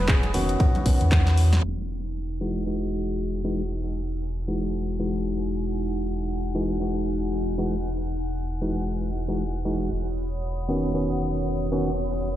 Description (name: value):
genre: deep house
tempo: 116 BPM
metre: 4/4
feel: swing 58% on 16ths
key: E major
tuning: A4 = 444 Hz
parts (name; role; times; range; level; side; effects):
- trumpet with bucket mute; melody; 0.0-1.3 s; F#4 to G#4; -34 LUFS; equal; tape echo
- warbly tape-like pad; sustained chords; 0.0-12.4 s; D#4 to F#6; -35 LUFS; right 2 dB; chorus, built-in reverb, sidechain pumping
- round analog bass; bass; 0.0-12.4 s; E1 to E2; -27 LUFS; equal; sidechain pumping
- electronic kick drum; drums; 0.1-1.2 s; none; -20 LUFS; equal; none
- house drum kit; drums; 0.1-1.8 s; crash cymbal, handclaps, hi-hat, snare drum; -31 LUFS; equal; low-pass filter on hats, low-pass filter on snare, low-pass filter on cymbals
- congas; percussion; 0.2-1.6 s; none; -34 LUFS; right 1 dB; none
- percussive organ stab; stabs; 0.3-11.9 s; D#3 to F#4; -28 LUFS; left 1 dB; chorus, tape echo
room: light reverb, digital ambience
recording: played on a big sound system in a bare room, stone room reverb, low-pass filter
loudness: -23 LUFS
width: side -12 dB against mid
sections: 0.0-1.6 A section; 1.6-12.4 B section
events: filter sweep on synth stab 0.0-1.6; drum fill 1.1-1.6; band accent 1.5; filter sweep 1.6-12.4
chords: 0.0 Badd9/E; 1.6 Emaj9; 9.9 Badd9/E